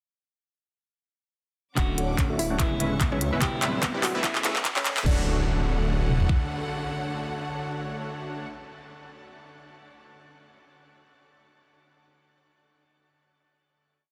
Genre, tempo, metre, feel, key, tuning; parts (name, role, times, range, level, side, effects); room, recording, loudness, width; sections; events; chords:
future bass; 146 BPM; 4/4; swing 55% on 16ths, half-time; D lydian; A4 = 440 Hz
mallet-like synth pluck; melody; 1.8-8.5 s; C#4 to G5; -39 LUFS; equal
semi-hollow electric guitar; accompaniment; 1.8-8.5 s; C3 to A4; -37 LUFS; equal; sidechain pumping, dub echo
rich studio string section; sustained chords; 1.8-8.5 s; D3 to D6; -41 LUFS; equal; sidechain pumping
thumb-piano-like synth pluck; arpeggios; 1.8-5.3 s; B3 to A4; -45 LUFS; equal
supersaw stab; riff; 1.8-8.5 s; G3 to G#5; -36 LUFS; equal; sidechain pumping, low-pass filter, dub echo
detuned saw bass; bass; 1.8-6.3 s; D1 to D2; -32 LUFS; equal; chorus, sidechain pumping
trap drum kit; drums; 1.8-6.4 s; kick drum, toms; -27 LUFS; equal; studio reverb
trap drum kit; drums; 1.8-5.2 s; crash cymbal, handclaps, hi-hat; -33 LUFS; equal; studio reverb
riser and impact; sound effects; 3.0-8.5 s; -40 LUFS; equal
light reverb; dense, heavily limited modern master, high-pass filter; -26 LUFS; mono
1.8-5.1 build; 5.1-8.3 final chord
build-up 1.8-5.1; drum fill 1.8-5.1; filter sweep on supersaw synth 1.8-5.1; filter sweep 1.8-5.1
1.8 Dmaj7; 2.6 C#m7/D; 3.4 Cmaj7/D; 4.2 Amaj9/D; 5.1 Dmaj7